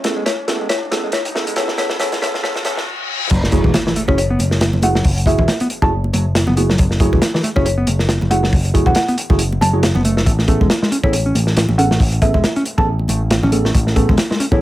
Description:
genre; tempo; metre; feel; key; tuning
breakbeat, breaks; 138 BPM; 4/4; swing 57% on 16ths; F# minor; A4 = 439 Hz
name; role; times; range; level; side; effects
modern bright picked electric bass; riff; 0.0-14.6 s; E3 to E4; -22 LUFS; equal; tube saturation, vintage 12-bit sampler grit, dub echo
tine electric piano; stabs; 0.0-14.6 s; A3 to A4; -23 LUFS; right 2 dB; overdrive, dub echo
picked electric bass; bass; 0.0-14.6 s; E1 to E2; -18 LUFS; equal; tube saturation, high-pass filter
crunchy breakbeat drum kit; drums; 0.0-14.6 s; crash cymbal, hi-hat, kick drum, snare drum; -18 LUFS; equal; none
riser, reverse cymbal and impact; sound effects; 0.0-5.0 s; none; -27 LUFS; left 2 dB; none
folk marimba with medium hard mallets; melody; 0.3-14.6 s; C#5 to A5; -22 LUFS; left 1 dB; AM radio sound, dub echo
congas; percussion; 3.5-14.6 s; none; -24 LUFS; right 2 dB; none
room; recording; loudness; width
light reverb; high-pass filter; -14 LUFS; side -15 dB against mid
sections
0.0-3.3 A section; 3.3-14.6 B section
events
build-up 0.0-3.3; drum fill 0.0-2.9; riser 0.0-2.9; filter sweep on drum 0.0-3.3; filter sweep on picked electric bass 0.0-3.3; filter sweep on tine electric piano 0.0-3.3; filter sweep 0.0-3.3; reverse cymbal 2.4-3.3; drop 3.3-14.6; impact 3.3-5.0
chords
0.0 Amaj9; 3.3 F#m9; 10.3 Amaj9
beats
0.27 0.70 1.14 | 1.57 2.00 2.44 2.87 | 3.31 3.74 4.18 4.61 | 5.05 5.48 5.92 6.35 | 6.79 7.22 7.66 8.09 | 8.53 8.96 9.40 9.83 | 10.27 10.70 11.13 11.57 | 12.00 12.44 12.87 13.31 | 13.74 14.18 14.61

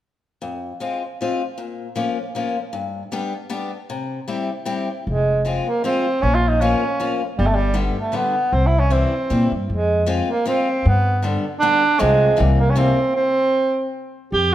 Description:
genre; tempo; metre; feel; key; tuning
musette waltz; 156 BPM; 3/4; swing 54% on 8ths; F minor; A4 = 444 Hz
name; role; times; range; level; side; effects
picked steel-string acoustic guitar; accompaniment; 0.4-13.0 s; F2 to G4; -25 LUFS; left 4 dB; none
warm tenor saxophone; melody; 5.1-14.5 s; G3 to G4; -19 LUFS; right 2 dB; none
upright bass; bass; 5.1-14.5 s; F1 to Bb2; -18 LUFS; equal; none
room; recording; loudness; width
moderate recital hall reverb, RT60 1.6 s; none; -17 LUFS; side -13 dB against mid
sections
0.4-5.1 A section; 5.1-14.3 B section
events
stop 13.2-14.3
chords
0.4 Fm; 1.6 Bbm; 2.7 G; 3.9 C; 5.1 Fm; 6.2 Bbm; 7.4 G; 8.5 C; 9.7 Fm; 10.8 G; 12.0 Fm/C; 12.4 C7; 13.2 N.C.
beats
| 0.42 0.81 1.20 | 1.58 1.97 2.35 | 2.73 3.12 3.50 | 3.89 4.28 4.67 | 5.07 5.46 5.85 | 6.23 6.62 7.00 | 7.38 7.77 8.15 | 8.53 8.92 9.30 | 9.69 10.08 10.46 | 10.85 11.23 11.62 | 12.00 12.38 12.77 | 13.15 13.54 13.93 | 14.32

